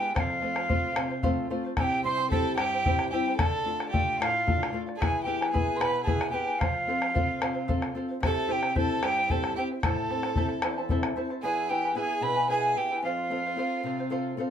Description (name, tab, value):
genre	andean folk, Andean ensemble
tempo	75 BPM (dotted quarters)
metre	6/8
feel	straight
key	unclear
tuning	A4 = 440 Hz
part	reedy quena	melody	0.0-14.3 s	F5 to C6	-29 LUFS	right 2 dB	none
part	bright violin	second line	0.0-14.3 s	F4 to C5	-35 LUFS	right 3 dB	none
part	charango	accompaniment	0.0-14.5 s	E4 to A5	-32 LUFS	right 1 dB	none
part	nylon-string guitar	accompaniment	0.0-14.5 s	E2 to C5	-33 LUFS	left 4 dB	none
part	bombo	percussion	0.2-11.4 s	none	-29 LUFS	left 2 dB	none
room	wet small room reverb, RT60 0.5 s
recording	minimal, uncompressed stereo recording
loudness	-25 LUFS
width	side -8 dB against mid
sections	0.0-11.4 A section; 11.4-14.5 A section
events	nylon-string guitar fill 1.0-1.8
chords	0.2 F; 1.8 C; 3.4 Dm; 5.0 E; 6.6 F; 8.2 C; 9.8 Am; 11.4 E; 13.0 F